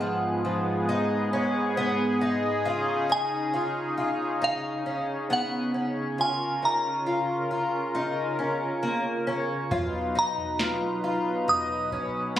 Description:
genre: dream pop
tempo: 68 BPM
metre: 4/4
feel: straight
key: unclear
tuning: A4 = 440 Hz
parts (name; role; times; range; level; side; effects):
- glassy synth bell; melody; 0.0-12.4 s; E#5 to D#6; -28 LUFS; right 1 dB; chorus, tremolo, tape echo
- warm analog pad; sustained chords; 0.0-12.4 s; G#2 to B4; -29 LUFS; equal; chorus, tremolo
- fingerpicked twelve-string acoustic guitar; arpeggios; 0.0-12.4 s; E#3 to E#4; -29 LUFS; left 2 dB; lush chorus, tape echo
- soft vintage rhythm box; drums; 9.7-12.4 s; kick drum, snare drum, toms; -31 LUFS; equal; none
room: light reverb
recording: recorded on a phone in the room, studio reverb, compression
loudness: -24 LUFS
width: side -11 dB against mid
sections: 0.0-12.4 A section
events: none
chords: 0.0 G#m7; 2.7 C#sus2; 6.2 A#m/C#; 9.7 Bmaj7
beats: 0.01 0.89 1.77 | 2.66 3.54 4.42 5.30 | 6.18 7.07 7.95 8.83 | 9.71 10.60 11.48 12.36

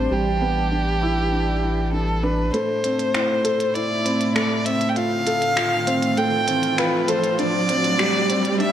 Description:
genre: piano and strings electronica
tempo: 99 BPM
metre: 4/4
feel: straight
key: A minor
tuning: A4 = 442 Hz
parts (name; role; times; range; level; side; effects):
- rich violin; melody; 0.0-8.7 s; G4 to G5; -22 LUFS; equal; none
- dark studio string section; sustained chords; 0.0-8.7 s; A2 to F4; -27 LUFS; right 1 dB; none
- warm upright piano; riff; 0.0-8.7 s; G3 to A4; -24 LUFS; equal; none
- round analog bass; bass; 0.0-2.5 s; A1; -25 LUFS; equal; none
- minimal click drum kit; drums; 2.5-8.7 s; finger snaps, hi-hat; -27 LUFS; equal; high-pass filter on hats, low-pass filter on hats, high-pass filter on snare, low-pass filter on snare, high-pass filter on room, low-pass filter on room
- riser; sound effects; 4.3-8.7 s; none; -28 LUFS; equal; none
room: moderate scoring stage reverb, RT60 1.6 s, small room ambience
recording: high-pass filter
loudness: -18 LUFS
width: side -10 dB against mid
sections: 0.0-2.5 A section; 2.5-8.7 B section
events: filter sweep on upright piano 0.0-2.5; build-up 2.5-8.7; riser 4.3-8.7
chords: 0.1 Em7/A; 2.5 Am; 5.0 F/A; 7.4 Gsus4/A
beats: | 0.12 0.72 1.33 1.93 | 2.54 3.15 3.75 4.36 | 4.96 5.57 6.18 6.78 | 7.39 8.00 8.60

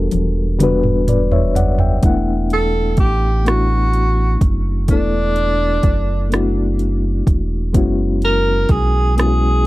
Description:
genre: slow six-eight R&B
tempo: 42 BPM (dotted quarters)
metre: 6/8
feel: straight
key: unclear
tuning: A4 = 440 Hz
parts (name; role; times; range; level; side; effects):
- mellow reed electric piano; accompaniment; 0.0-9.7 s; G3 to G5; -20 LUFS; left 3 dB; fast tremolo
- round analog bass; bass; 0.0-9.7 s; E1 to B1; -18 LUFS; equal; none
- smooth R&B drum kit; drums; 0.1-9.4 s; hi-hat, kick drum, rim click, toms; -17 LUFS; right 1 dB; overdrive
- warm tenor saxophone; melody; 2.5-9.7 s; D4 to A#4; -20 LUFS; right 1 dB; tape echo
room: little or no reverb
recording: dry, close 1970s-style studio recording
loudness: -14 LUFS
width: side -18 dB against mid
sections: 0.0-2.0 A section; 2.0-9.7 B section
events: drum fill 0.0-2.0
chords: 0.0 Em11; 2.0 E9sus4; 7.7 F#9sus4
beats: 0.60 | 2.03 3.46 | 4.88 6.31 | 7.74 9.17

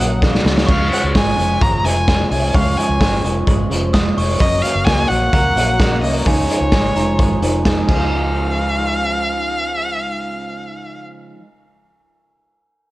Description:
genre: jangly indie pop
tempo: 129 BPM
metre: 4/4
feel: straight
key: Db major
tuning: A4 = 439 Hz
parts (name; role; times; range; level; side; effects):
- rich violin; melody; 0.0-11.0 s; Db5 to Bb5; -21 LUFS; equal; none
- glockenspiel with brass mallets; second line; 0.0-11.0 s; Ab5 to Eb6; -27 LUFS; right 1 dB; none
- fingerpicked plugged-in steel-string acoustic guitar; accompaniment; 0.0-11.5 s; Gb2 to Eb4; -24 LUFS; right 3 dB; none
- electric guitar through a small old amp; arpeggios; 0.0-11.4 s; Gb2 to Eb4; -24 LUFS; left 2 dB; ensemble chorus
- vintage muted fingered electric bass; bass; 0.0-11.0 s; F1 to Db2; -21 LUFS; equal; none
- raw garage drum kit; drums; 0.2-8.0 s; crash cymbal, hi-hat, kick drum, snare drum; -18 LUFS; equal; none
room: light reverb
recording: worn, warbling old tape, cassette tape, warbly pitch drift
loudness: -14 LUFS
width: side -18 dB against mid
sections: 0.0-8.1 A section; 8.1-11.8 B section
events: drum fill 0.2-0.7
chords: 0.0 Gb; 0.7 Db; 4.4 Gb; 6.3 Dbadd9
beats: 0.22 | 0.69 1.15 1.61 2.08 | 2.54 3.01 3.47 3.94 | 4.40 4.87 5.33 5.79 | 6.26 6.72 7.19 7.65 | 8.12 8.58 9.05 9.51 | 9.98 10.44 10.91 11.37

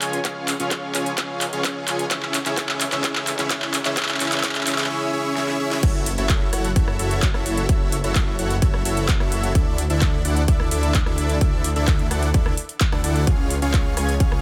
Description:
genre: EDM, festival progressive house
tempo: 129 BPM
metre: 4/4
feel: straight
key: F# minor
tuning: A4 = 443 Hz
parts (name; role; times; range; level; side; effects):
- dense compressed supersaw; riff; 0.0-14.4 s; C#4 to G#5; -27 LUFS; equal; sidechain pumping, dub echo
- detuned saw bass; bass; 0.0-14.4 s; F#1 to D2; -28 LUFS; equal; chorus, sidechain pumping, high-pass filter
- big-room dance drum kit; drums; 0.0-14.4 s; crash cymbal, handclaps, hi-hat, rim click, snare drum; -28 LUFS; equal; overdrive, high-pass filter on snare, small room ambience, high-pass filter on hats, high-pass filter on cymbals
- electronic kick drum; drums; 0.2-14.3 s; none; -22 LUFS; equal; overdrive, high-pass filter on kick, small room ambience
room: light reverb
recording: none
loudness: -21 LUFS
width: mono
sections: 0.0-5.8 A section; 5.8-14.4 B section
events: build-up 0.0-5.8; drum fill 0.0-4.9, 5.4-5.8; drop 5.8-14.4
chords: 0.0 C#; 2.1 E6/B; 5.8 F#m7; 9.6 Dsus2; 13.3 C#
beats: | 0.25 0.71 1.18 1.65 | 2.11 2.58 3.04 3.50 | 3.97 4.44 4.90 5.37 | 5.83 6.30 6.76 7.23 | 7.69 8.16 8.62 9.09 | 9.55 10.02 10.48 10.95 | 11.41 11.88 12.34 12.81 | 13.27 13.74 14.20

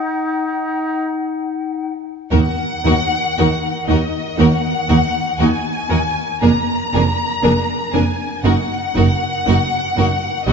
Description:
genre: classical, slow romantic movement for symphony orchestra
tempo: 49-61 BPM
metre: 4/4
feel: rubato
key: Eb minor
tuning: A4 = 445 Hz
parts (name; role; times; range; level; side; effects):
- clear clarinet; second line; 0.0-1.9 s; Eb4; -23 LUFS; left 4 dB; none
- mellow hollow silver concert flute; second line; 0.0-2.0 s; Gb5; -26 LUFS; left 5 dB; none
- warm oboe; second line; 0.0-1.1 s; Eb4; -26 LUFS; right 1 dB; none
- warm studio violin section; melody; 2.3-10.5 s; Eb5 to Bb5; -21 LUFS; left 3 dB; none
- clear studio violin section; second line; 2.3-10.5 s; Gb4 to B4; -24 LUFS; left 4 dB; none
- warm studio viola section; accompaniment; 2.3-10.5 s; F#3 to Eb4; -20 LUFS; right 1 dB; none
- dark studio double bass section; bass; 2.3-10.5 s; F1 to Eb2; -22 LUFS; right 3 dB; none
- warm studio cello section; bass; 2.3-10.5 s; Eb2 to B2; -22 LUFS; right 3 dB; none
room: wet concert hall reverb, RT60 2.3 s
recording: nothing above 7.7 kHz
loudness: -15 LUFS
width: side -6 dB against mid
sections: 0.0-2.3 A section; 2.3-10.5 B section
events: none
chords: 0.0 Ebm; 6.4 Bb7/F; 8.4 Ebm/Gb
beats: 1.13 | 2.31 3.38 4.38 5.39 | 6.42 7.44 8.44 9.47 | 10.48

